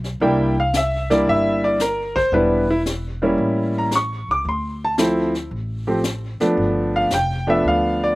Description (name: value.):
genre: jazz piano trio.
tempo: 113 BPM.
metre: 4/4.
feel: swing 69% on 8ths.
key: unclear.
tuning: A4 = 440 Hz.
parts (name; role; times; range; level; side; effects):
upright bass; bass; 0.0-8.2 s; E1 to D2; -26 LUFS; equal; none.
jazz brush drum kit; drums; 0.0-8.2 s; brushed snare drum, hi-hat, kick drum, snare drum; -28 LUFS; left 2 dB; slapback echo.
clear baby grand piano; melody; 0.2-8.1 s; F3 to D6; -18 LUFS; equal; none.
room: little or no reverb.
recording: recorded outdoors, with no room sound.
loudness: -17 LUFS.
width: side -20 dB against mid.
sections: 0.0-8.2 A section.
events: none.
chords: 0.2 C7; 2.3 Em7; 3.4 A7b9; 4.4 Dm7; 6.6 G7.